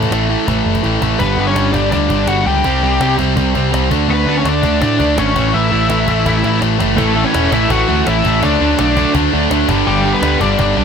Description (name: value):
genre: punk rock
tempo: 166 BPM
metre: 4/4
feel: straight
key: unclear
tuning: A4 = 440 Hz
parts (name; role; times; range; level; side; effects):
- overdriven semi-hollow guitar; riff; 0.0-10.8 s; G2 to D4; -18 LUFS; right 15 dB; none
- tight distorted guitar; riff; 0.0-10.8 s; G2 to D4; -18 LUFS; left 18 dB; distortion
- overdriven picked electric bass; bass; 0.0-10.8 s; E1 to A2; -18 LUFS; left 1 dB; none
- cajon; drums; 0.0-10.7 s; none; -23 LUFS; equal; none
- smooth overdriven lead guitar; melody; 1.2-10.8 s; G3 to G5; -17 LUFS; left 3 dB; none
- cranked stack guitar; riff; 7.0-10.8 s; G2 to E4; -21 LUFS; equal; overdrive
room: light reverb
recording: none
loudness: -12 LUFS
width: side -6 dB against mid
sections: 0.0-1.2 A section; 1.2-7.0 B section; 7.0-10.8 C section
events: drum fill 0.8-1.2, 6.3-7.0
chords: 0.0 A5; 1.2 G; 2.6 C5; 3.9 D5; 5.4 A; 8.4 D; 9.7 G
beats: 0.12 0.48 0.84 | 1.20 1.56 1.93 2.29 | 2.65 3.01 3.37 3.73 | 4.10 4.46 4.82 5.18 | 5.54 5.90 6.26 6.62 | 6.99 7.35 7.71 8.07 | 8.43 8.79 9.15 9.51 | 9.87 10.23 10.59